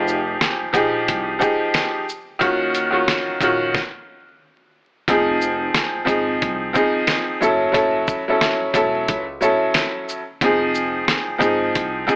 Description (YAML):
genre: hip hop, boom-bap hip-hop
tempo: 90 BPM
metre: 4/4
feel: swing 59% on 16ths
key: unclear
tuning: A4 = 439 Hz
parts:
  - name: bright upright piano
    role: accompaniment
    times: 0.0-12.2 s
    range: Eb3 to A4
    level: -18 LUFS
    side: equal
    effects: cassette tape, high-pass filter, low-pass filter
  - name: upright bass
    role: bass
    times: 0.0-12.1 s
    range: Fb1 to Eb2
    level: -32 LUFS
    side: equal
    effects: none
  - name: dusty soul sampler-style drum kit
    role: drums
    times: 0.1-12.2 s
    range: hi-hat, kick drum, shaker, snare drum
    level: -21 LUFS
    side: equal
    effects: none
room: light reverb, studio reverb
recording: vinyl crackle, AM radio sound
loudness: -17 LUFS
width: side -27 dB against mid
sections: 0.0-5.1 A section; 5.1-12.2 B section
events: stop 3.7-5.1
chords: 0.0 Fm9; 2.4 Ebm9; 3.7 N.C.; 5.1 Fm7; 7.4 Gbm7; 10.4 Fm7